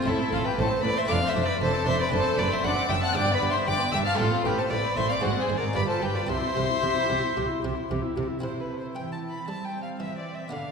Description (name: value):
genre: classical, baroque-style concerto movement with solo episodes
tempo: 115 BPM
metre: 4/4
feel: straight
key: C major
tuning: A4 = 440 Hz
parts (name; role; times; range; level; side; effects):
- rich violin; melody; 0.0-10.7 s; A4 to B5; -30 LUFS; left 1 dB; none
- warm chamber violin section; melody; 0.0-10.7 s; E4 to F#6; -32 LUFS; left 2 dB; none
- warm chamber violin section; second line; 0.0-10.7 s; E4 to B5; -30 LUFS; left 2 dB; none
- buff-stop harpsichord; accompaniment; 0.0-10.7 s; F2 to A4; -36 LUFS; equal; none
- warm chamber viola section; accompaniment; 0.0-10.7 s; Ab3 to G4; -33 LUFS; equal; none
- rich chamber cello section; bass; 0.1-10.7 s; F2 to G3; -32 LUFS; right 2 dB; none
- warm studio double bass section; bass; 0.1-8.2 s; F1 to C2; -33 LUFS; right 3 dB; none
room: wet concert hall reverb, RT60 1.8 s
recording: minimal, uncompressed stereo recording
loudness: -24 LUFS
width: side -5 dB against mid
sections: 0.0-8.4 A section; 8.4-10.7 B section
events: none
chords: 0.1 Am; 1.1 Dm7/F; 2.1 D7/F#; 3.2 G; 4.2 F/A; 5.2 Ab9; 5.8 G5; 6.3 C